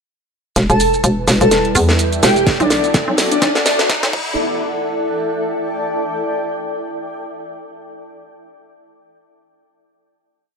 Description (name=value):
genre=bass house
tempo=126 BPM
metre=4/4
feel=swing 57% on 16ths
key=E minor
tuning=A4 = 441 Hz
part: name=dark analog pad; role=sustained chords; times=0.9-4.4 s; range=G3 to D5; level=-24 LUFS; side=equal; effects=chorus, sidechain pumping
part: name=hollow knocking FM bass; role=bass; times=0.6-4.4 s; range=E1 to E2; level=-16 LUFS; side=equal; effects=sidechain pumping
part: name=garage drum kit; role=drums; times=0.6-4.2 s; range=crash cymbal, hi-hat, shaker, snare drum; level=-18 LUFS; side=right 1 dB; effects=high-pass filter on snare, high-pass filter on hats, high-pass filter on perc, high-pass filter on cymbals
part: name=riser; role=sound effects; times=2.0-4.4 s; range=none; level=-26 LUFS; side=equal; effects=none
part: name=granular cloud pad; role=texture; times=1.7-6.2 s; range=E4 to G5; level=-22 LUFS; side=left 1 dB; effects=built-in reverb, sidechain pumping
part: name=airy dreamy lead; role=melody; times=0.7-3.5 s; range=D4 to A4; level=-17 LUFS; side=equal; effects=chorus, ping-pong delay
part: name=electronic kick drum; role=drums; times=2.5-4.2 s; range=none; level=-20 LUFS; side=equal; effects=none
room=moderate digital room reverb, RT60 1.1 s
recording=high-pass filter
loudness=-14 LUFS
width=side -5 dB against mid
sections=0.6-4.4 build; 4.4-6.3 final chord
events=build-up 0.6-4.4; drum fill 0.6-4.4; filter sweep 0.6-4.4; riser 2.0-4.4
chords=0.6 Em; 2.5 Bm; 4.1 Em